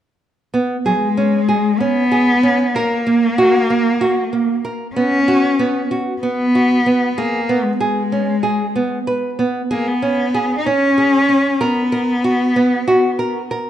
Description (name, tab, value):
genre	contemporary instrumental, contemporary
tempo	190 BPM (eighths)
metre	7/8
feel	straight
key	unclear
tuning	A4 = 441 Hz
part	nylon-string guitar	arpeggios	0.5-13.7 s	A#3 to B4	-18 LUFS	right 2 dB	none
part	rich cello	melody	0.9-13.5 s	F#3 to D#4	-16 LUFS	left 2 dB	none
room	moderate scoring stage reverb, RT60 1.8 s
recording	dark, warm production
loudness	-14 LUFS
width	side -11 dB against mid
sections	0.5-13.7 A section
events	none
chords	0.5 C#5; 2.7 F#/A#; 5.0 F#sus4; 7.2 C#5; 11.6 B5